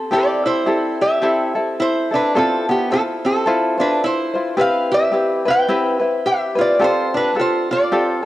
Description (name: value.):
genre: Hawaiian.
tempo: 108 BPM.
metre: 4/4.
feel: swing 58% on 8ths.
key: C major.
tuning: A4 = 440 Hz.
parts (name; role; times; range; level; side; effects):
lap resonator guitar; melody; 0.0-8.3 s; B3 to G5; -17 LUFS; right 1 dB; none.
tenor ukulele; accompaniment; 0.1-8.3 s; C4 to C5; -20 LUFS; left 1 dB; cassette tape.
room: moderate lush hall reverb, RT60 3.2 s.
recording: home recording on cassette.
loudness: -15 LUFS.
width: side -15 dB against mid.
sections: 0.1-8.3 A section.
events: none.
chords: 0.1 C6; 2.3 Fmaj7; 4.6 Cmaj7; 6.8 G9sus4.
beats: | 0.12 0.68 1.23 1.79 | 2.35 2.90 3.46 4.02 | 4.57 5.13 5.69 6.24 | 6.80 7.36 7.91.